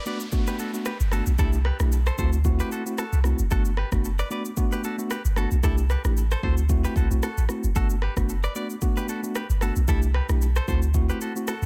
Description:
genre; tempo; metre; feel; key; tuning
afrobeats; 113 BPM; 4/4; swing 55% on 16ths; G major; A4 = 440 Hz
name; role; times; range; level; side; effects
direct-recorded clean electric guitar; riff; 0.0-11.7 s; E4 to D5; -36 LUFS; equal; spring reverb, digital delay
downlifter; sound effects; 0.0-3.5 s; none; -46 LUFS; equal; none
mellow tine electric piano; accompaniment; 0.1-11.5 s; A3 to G4; -33 LUFS; equal; none
afro-pop drum kit; drums; 0.1-11.7 s; kick drum, rim click, shaker; -30 LUFS; equal; none
punchy sub bass; bass; 1.0-11.7 s; F#1 to D2; -25 LUFS; equal; none
room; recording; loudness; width
little or no reverb; none; -24 LUFS; mono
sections
0.0-11.7 A section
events
none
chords
0.0 Gmaj9; 1.4 C6; 2.2 D7; 3.5 Gmaj9; 5.6 C6; 6.4 D7; 7.8 Gmaj9; 9.9 C6; 10.7 D7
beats
0.33 0.86 | 1.39 1.92 2.45 2.98 | 3.51 4.04 4.57 5.10 | 5.63 6.17 6.70 7.23 | 7.76 8.29 8.82 9.35 | 9.88 10.41 10.94 11.47

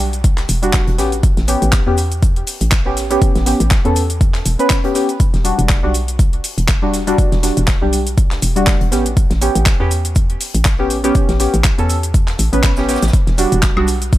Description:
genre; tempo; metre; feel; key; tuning
deep house; 121 BPM; 4/4; swing 56% on 16ths; unclear; A4 = 440 Hz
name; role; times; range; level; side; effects
deep mellow chord stab; stabs; 0.0-13.9 s; G3 to B4; -18 LUFS; equal; chorus, sidechain pumping, tape echo
hollow knocking FM bass; bass; 0.0-14.2 s; E1 to E2; -18 LUFS; equal; sidechain pumping
deep house drum kit; drums; 0.0-14.2 s; handclaps, hi-hat, shaker, woodblock; -22 LUFS; left 1 dB; overdrive
big rock drum kit; drums; 0.2-14.2 s; hi-hat, shaker, snare drum; -33 LUFS; left 1 dB; none
electronic kick drum; drums; 0.2-14.2 s; none; -14 LUFS; equal; overdrive
room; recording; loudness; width
small room ambience; none; -13 LUFS; side -15 dB against mid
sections
0.0-14.2 A section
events
none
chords
0.0 Em9; 1.0 A9; 5.2 Em9; 8.9 A9; 13.1 Em9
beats
0.24 0.74 | 1.23 1.73 2.23 2.72 | 3.22 3.71 4.21 4.70 | 5.20 5.70 6.19 6.69 | 7.18 7.68 8.18 8.67 | 9.17 9.66 10.16 10.65 | 11.15 11.65 12.14 12.64 | 13.13 13.63 14.13

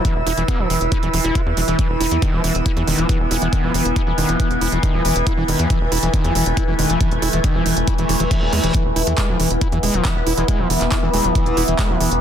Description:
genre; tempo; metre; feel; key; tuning
psychedelic trance; 138 BPM; 4/4; straight; E major; A4 = 435 Hz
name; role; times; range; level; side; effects
overtone-sweeping drone; sustained chords; 0.0-12.2 s; E3 to E4; -23 LUFS; equal; chorus, built-in reverb, phaser, sidechain pumping
screaming distorted acid line; riff; 0.0-12.1 s; D#3 to F4; -23 LUFS; equal; distortion, chorus, auto-pan, cassette tape, sidechain pumping, dub echo
big-room dance drum kit; drums; 0.0-12.2 s; handclaps, hi-hat; -25 LUFS; right 3 dB; none
electronic kick drum; drums; 0.0-11.9 s; none; -20 LUFS; equal; none
airy breathy pad; texture; 0.0-12.2 s; E4 to E6; -26 LUFS; left 2 dB; chorus, phaser, sidechain pumping
tight sequencer bass; bass; 0.2-12.2 s; E1 to E2; -22 LUFS; equal; none
reverse cymbal; sound effects; 8.0-8.7 s; none; -28 LUFS; right 2 dB; none
metallic wobble bass; second line; 10.0-12.0 s; E3 to B3; -30 LUFS; left 4 dB; chorus, sidechain pumping, high-pass filter, tape echo
room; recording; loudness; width
light reverb, digital ambience; dense, heavily limited modern master; -16 LUFS; side -9 dB against mid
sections
0.0-12.2 A section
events
filter sweep on acid bass 0.0-12.2; reverse cymbal 8.0-8.7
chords
0.0 E5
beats
| 0.05 0.48 0.92 1.35 | 1.79 2.22 2.66 3.09 | 3.53 3.96 4.40 4.83 | 5.27 5.70 6.14 6.57 | 7.00 7.44 7.88 8.31 | 8.74 9.18 9.61 10.05 | 10.48 10.92 11.35 11.79

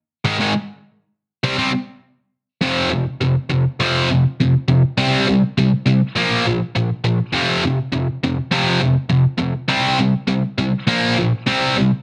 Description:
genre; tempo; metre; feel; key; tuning
punk; 203 BPM; 4/4; straight; unclear; A4 = 441 Hz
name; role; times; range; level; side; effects
sludgy distorted guitar; solo; 0.2-11.9 s; F2 to C4; -18 LUFS; equal; overdrive
room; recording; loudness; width
moderate studio reverb, RT60 0.7 s; dense, heavily limited modern master; -18 LUFS; mono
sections
0.0-2.6 A section; 2.6-12.0 B section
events
none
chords
0.2 Ab5; 1.4 C5; 2.6 F5; 5.0 C5; 6.0 Bb5; 7.3 F5; 9.7 C5; 10.7 Bb5; 11.5 C5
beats
| 0.24 0.54 0.83 1.13 | 1.43 1.73 2.02 2.32 | 2.61 2.91 3.21 3.50 | 3.80 4.09 4.39 4.69 | 4.98 5.28 5.57 5.87 | 6.16 6.46 6.75 7.05 | 7.34 7.64 7.93 8.23 | 8.53 8.82 9.11 9.41 | 9.70 10.00 10.29 10.59 | 10.88 11.17 11.47 11.76

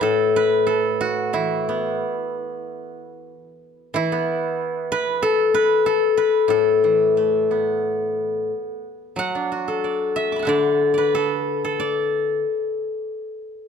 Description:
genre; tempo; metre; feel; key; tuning
chinese traditional, Chinese solo plucked strings; 92 BPM; 4/4; rubato; A zhi mode; A4 = 435 Hz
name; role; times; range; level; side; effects
steel-string zither; solo; 0.0-13.7 s; A2 to D6; -19 LUFS; left 2 dB; none
room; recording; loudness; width
moderate scoring stage reverb, RT60 1.5 s; dark, warm production; -19 LUFS; side -7 dB against mid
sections
0.0-13.7 A section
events
none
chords
none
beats
0.04 0.70 | 1.35 2.01 2.66 3.31 | 3.95 4.59 5.22 5.85 | 6.50 7.16 7.83 8.50 | 9.18 9.84 10.49 11.14 | 11.80 12.43 13.06

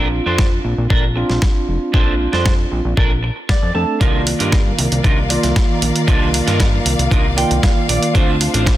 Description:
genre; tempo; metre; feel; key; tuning
nu-disco, nu disco; 116 BPM; 4/4; straight; C dorian; A4 = 441 Hz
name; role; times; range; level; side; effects
tine electric piano; accompaniment; 0.0-8.8 s; Eb3 to D5; -21 LUFS; right 1 dB; medium tremolo, sidechain pumping, tape echo
clean electric guitar; riff; 0.0-8.7 s; D4 to A5; -22 LUFS; right 3 dB; analog chorus, tape echo
fat analog bass; bass; 0.0-8.8 s; F1 to G2; -20 LUFS; equal; none
dusty soul sampler-style drum kit; drums; 0.4-8.8 s; hi-hat, snare drum; -22 LUFS; right 1 dB; none
electronic kick drum; drums; 0.4-8.8 s; none; -15 LUFS; equal; none
warm symphonic string section; sustained chords; 4.0-8.8 s; Eb3 to F5; -24 LUFS; left 2 dB; sidechain pumping
room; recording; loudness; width
light reverb; dense, heavily limited modern master; -14 LUFS; side -14 dB against mid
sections
0.0-8.8 A section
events
clean electric guitar fill 3.2-4.0, 7.1-8.1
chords
0.0 Bbmaj7; 4.0 Cm11; 8.1 Dm7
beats
0.39 0.91 1.43 | 1.94 2.46 2.98 3.49 | 4.01 4.53 5.05 5.56 | 6.08 6.60 7.12 7.63 | 8.15 8.67

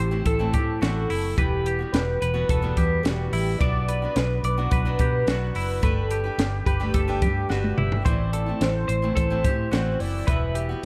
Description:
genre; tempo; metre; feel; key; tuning
jangly indie pop; 108 BPM; 4/4; straight; A dorian; A4 = 440 Hz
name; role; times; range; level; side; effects
warm velvety synth lead; melody; 0.0-10.8 s; G4 to E5; -31 LUFS; equal; chorus, tape echo
picked steel-string acoustic guitar; accompaniment; 0.0-10.8 s; A2 to B4; -35 LUFS; equal; none
twelve-string electric guitar; arpeggios; 0.0-10.8 s; E4 to D5; -33 LUFS; equal; spring reverb, tape echo
vintage muted fingered electric bass; bass; 0.0-10.7 s; E1 to B2; -28 LUFS; equal; none
compact cocktail drum kit; drums; 0.3-10.7 s; hi-hat, kick drum, snare drum, toms; -28 LUFS; equal; none
room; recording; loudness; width
little or no reverb; echo-heavy mix; -24 LUFS; mono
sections
0.0-10.8 A section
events
drum fill 7.5-8.1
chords
0.0 Am; 1.4 Emadd9; 3.6 Bm; 5.8 Gadd9; 8.1 Am; 10.3 Emadd9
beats
0.26 0.82 | 1.38 1.93 2.49 3.05 | 3.60 4.16 4.72 5.27 | 5.83 6.39 6.94 7.50 | 8.06 8.61 9.17 9.72 | 10.28 10.84

